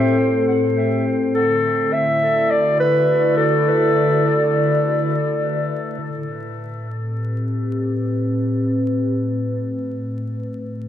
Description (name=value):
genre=ambient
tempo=free time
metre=none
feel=none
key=A dorian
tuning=A4 = 445 Hz
part: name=warm clarinet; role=melody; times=0.0-5.4 s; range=A4 to E5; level=-19 LUFS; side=equal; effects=dub echo
part: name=warbly tape-like pad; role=sustained chords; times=0.0-10.9 s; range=A2 to D5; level=-20 LUFS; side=left 1 dB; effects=chorus, built-in reverb
room=wet spring reverb, RT60 1.6 s, small room ambience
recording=echo-heavy mix, vinyl crackle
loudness=-17 LUFS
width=side -10 dB against mid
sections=0.0-6.0 A section; 6.0-10.9 B section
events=filter sweep on ambient pad 6.0-10.9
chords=0.0 Am7; 1.3 Dadd9; 6.0 Am7